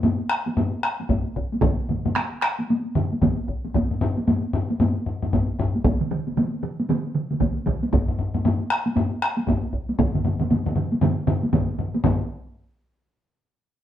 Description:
japanese traditional, taiko drum ensemble; 115 BPM; 4/4; swing 60% on 16ths
solo taiko drums; percussion; 0.0-12.5 s; -24 LUFS; left 3 dB
taiko ensemble; percussion; 0.0-12.3 s; -25 LUFS; equal
taiko ensemble; percussion; 1.1-12.3 s; -25 LUFS; equal
taiko ensemble; percussion; 1.6-12.5 s; -26 LUFS; right 4 dB
wet studio reverb, RT60 0.7 s; band playing live in one room; -21 LUFS; side -11 dB against mid
0.0-12.0 A section; 12.0-13.8 B section
speeding up 0.0-13.8
0.03 0.57 1.10 | 1.63 2.16 2.69 3.22 | 3.75 4.28 4.80 5.33 | 5.85 6.37 6.89 7.41 | 7.93 8.45 8.97 9.48 | 9.99 10.51 11.02 11.53 | 12.04

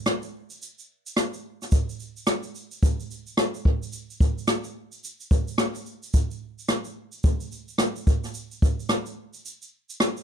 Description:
pop; 109 BPM; 4/4; swing 60% on 16ths
jazz brush drum kit; drums; 0.1-10.2 s; kick drum, rim click, shaker; -23 LUFS; equal
little or no reverb; -24 LUFS; side -8 dB against mid
0.0-10.2 A section
0.07 | 0.62 1.17 1.73 2.28 | 2.83 3.38 3.93 4.49 | 5.04 5.59 6.14 6.69 | 7.25 7.80 8.35 8.90 | 9.45 10.00

